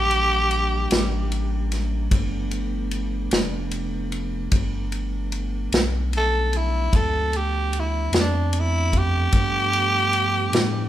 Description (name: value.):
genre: slow blues.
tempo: 50 BPM (dotted quarters).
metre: 12/8.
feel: straight.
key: G mixolydian.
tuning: A4 = 437 Hz.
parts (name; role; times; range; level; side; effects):
growling tenor saxophone; melody; 0.0-10.9 s; D4 to A4; -22 LUFS; equal; none.
mellow tonewheel organ; sustained chords; 0.0-10.9 s; E3 to Eb4; -31 LUFS; right 1 dB; slow rotary speaker.
saturated sub bass; bass; 0.0-10.9 s; F1 to A2; -25 LUFS; equal; none.
vintage drum kit; drums; 0.1-10.7 s; kick drum, ride cymbal, snare drum; -23 LUFS; equal; none.
room: light reverb.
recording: band playing live in one room.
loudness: -20 LUFS.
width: side -12 dB against mid.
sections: 0.0-10.9 A section.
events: tenor saxophone solo 0.0-10.9.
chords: 0.0 C9 (rootless); 2.1 G9.